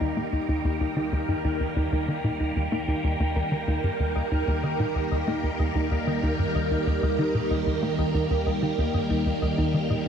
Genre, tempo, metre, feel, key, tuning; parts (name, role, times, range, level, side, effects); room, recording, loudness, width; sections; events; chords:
ambient, sequencer-driven space music; 94 BPM; 4/4; straight; Eb major; A4 = 440 Hz
phased string machine; sustained chords; 0.0-10.1 s; Eb3 to Bb4; -27 LUFS; right 1 dB; ensemble chorus, phaser
thumb-piano-like synth pluck; arpeggios; 0.0-10.1 s; Eb4 to Eb5; -32 LUFS; equal; chorus, auto-pan, tape echo
tight sequencer bass; riff; 0.0-10.0 s; Eb2 to Bb3; -27 LUFS; equal; cassette tape, tape echo
analog drone; bass; 0.0-10.1 s; Eb2; -38 LUFS; equal
moderate huge ambient reverb, RT60 8.6 s; -23 LUFS; side -8 dB against mid
0.0-10.1 A section
filter sweep on analog synth bass 0.0-10.1
0.0 Eb